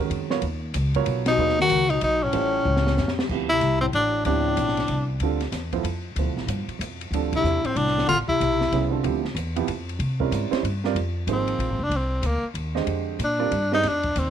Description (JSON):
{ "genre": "modal jazz", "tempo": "188 BPM", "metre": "3/4", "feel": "swing 63% on 8ths", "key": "G# dorian, D dorian from 3.3 s, F dorian from 11.0 s", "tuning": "A4 = 441 Hz", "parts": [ { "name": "dark baby grand piano", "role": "accompaniment", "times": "0.0-13.8 s", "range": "A#2 to Eb5", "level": "-28 LUFS", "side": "right 13 dB", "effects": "none" }, { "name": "upright bass", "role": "bass", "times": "0.1-14.3 s", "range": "F1 to C3", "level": "-27 LUFS", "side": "equal", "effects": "none" }, { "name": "open jazz drum kit", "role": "drums", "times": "0.1-14.3 s", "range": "crash cymbal, hi-hat, kick drum, ride cymbal, snare drum", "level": "-32 LUFS", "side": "left 1 dB", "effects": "none" }, { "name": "breathy tenor saxophone", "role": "melody", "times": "1.3-5.1, 7.4-8.9, 11.3-14.3 s", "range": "Bb3 to F#4", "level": "-23 LUFS", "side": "equal", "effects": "none" }, { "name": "mellow bass clarinet", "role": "second line", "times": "1.3-5.0, 7.3-8.9 s", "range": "A2 to D#3", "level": "-28 LUFS", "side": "left 11 dB", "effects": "none" } ], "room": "small room ambience", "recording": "1960s-style stereo with parts hard left and right", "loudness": "-21 LUFS", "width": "side -9 dB against mid", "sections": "0.0-3.3 A section; 3.3-11.0 B section; 11.0-14.3 C section", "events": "band accent 1.2, 7.3; drum fill 2.7-3.3; tenor saxophone solo 11.0-14.3", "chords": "0.0 G#m11; 2.3 A7alt; 3.3 Dm11; 10.0 C7b9; 11.0 Fm11; 12.9 Bbsus2/F", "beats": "0.11 | 0.43 0.75 1.07 | 1.39 1.71 2.02 | 2.34 2.66 2.98 | 3.30 3.62 3.94 | 4.25 4.57 4.89 | 5.21 5.53 5.85 | 6.17 6.49 6.81 | 7.13 7.45 7.76 | 8.09 8.40 8.72 | 9.04 9.36 9.68 | 10.00 10.32 10.64 | 10.96 11.28 11.60 | 11.92 12.24 12.56 | 12.88 13.21 13.53 | 13.85 14.16" }